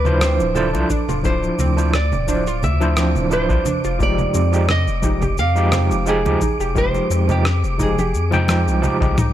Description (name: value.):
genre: sunset chillout.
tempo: 87 BPM.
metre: 4/4.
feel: swing 54% on 16ths.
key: unclear.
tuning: A4 = 440 Hz.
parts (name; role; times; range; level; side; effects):
nylon-string guitar; melody; 0.0-9.1 s; G4 to F5; -24 LUFS; right 3 dB; tape echo.
overdriven tine electric piano; accompaniment; 0.0-9.2 s; F3 to G5; -22 LUFS; moving between left 3 dB and right 3 dB; medium tremolo, auto-pan, ping-pong delay.
round analog bass; bass; 0.0-9.3 s; D1 to F2; -20 LUFS; left 1 dB; none.
wind-like tuned noise texture; texture; 0.0-9.3 s; D6; -30 LUFS; right 3 dB; built-in reverb.
dusty soul sampler-style drum kit; drums; 0.1-9.3 s; congas, rim click, shaker, toms; -24 LUFS; right 1 dB; overdrive.
soft round pluck; arpeggios; 0.2-9.3 s; C4 to G4; -29 LUFS; right 3 dB; analog chorus, cassette tape, ping-pong delay.
congas; percussion; 0.2-9.3 s; none; -29 LUFS; left 2 dB; none.
electronic kick drum; drums; 0.9-9.1 s; none; -23 LUFS; left 1 dB; none.
room: light reverb.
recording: none.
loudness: -16 LUFS.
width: side -12 dB against mid.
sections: 0.0-9.3 A section.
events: drum fill 9.0-9.3.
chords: 0.0 Dm9; 4.0 Fm9.